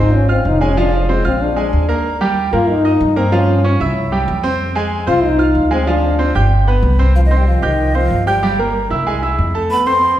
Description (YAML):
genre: jazz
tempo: 188 BPM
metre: 4/4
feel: straight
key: C minor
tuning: A4 = 440 Hz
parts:
  - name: breathy trombone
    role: second line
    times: 0.0-10.2 s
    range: Eb3 to F4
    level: -18 LUFS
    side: left 2 dB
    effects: none
  - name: bright concert grand piano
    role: accompaniment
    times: 0.0-10.1 s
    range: F3 to G6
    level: -18 LUFS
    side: right 2 dB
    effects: none
  - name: upright bass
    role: bass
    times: 0.0-10.1 s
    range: F1 to G2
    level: -16 LUFS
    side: equal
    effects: none
  - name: mellow hollow jazz flute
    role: melody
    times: 7.2-10.2 s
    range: Eb5 to C6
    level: -17 LUFS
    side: right 1 dB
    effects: none
room: wet recital hall reverb, RT60 1.8 s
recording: recorded in a church or concert hall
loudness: -12 LUFS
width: side -12 dB against mid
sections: 0.0-7.2 A section; 7.2-10.2 B section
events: trombone solo 0.0-7.2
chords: 0.0 Dbmaj7; 0.8 F5; 1.4 Bb7; 2.1 Eb; 3.3 Dbmaj7#11; 4.0 C; 4.6 Fm7; 5.9 G7sus4; 6.5 G; 7.2 Cm; 8.4 Gm; 9.1 Caug